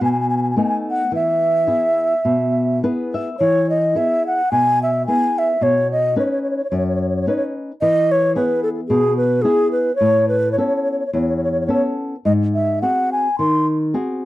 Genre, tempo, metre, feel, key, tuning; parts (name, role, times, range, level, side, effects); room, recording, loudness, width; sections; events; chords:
italian folk, Italian serenade; 108 BPM; 4/4; swing 54% on 8ths, rubato; E major; A4 = 440 Hz
mellow baroque flute; melody; 0.0-13.7 s; G#4 to B#5; -17 LUFS; equal; slapback echo
flamenco guitar; accompaniment; 0.0-14.3 s; E2 to E5; -20 LUFS; left 1 dB
light reverb; dry, close 1970s-style studio recording; -16 LUFS; side -16 dB against mid
0.0-3.4 A section; 3.4-14.3 A section
nylon-string guitar fill 2.5-3.4
0.0 B7; 1.1 E; 5.6 Badd9; 7.8 E; 10.0 Aadd9; 12.3 G#7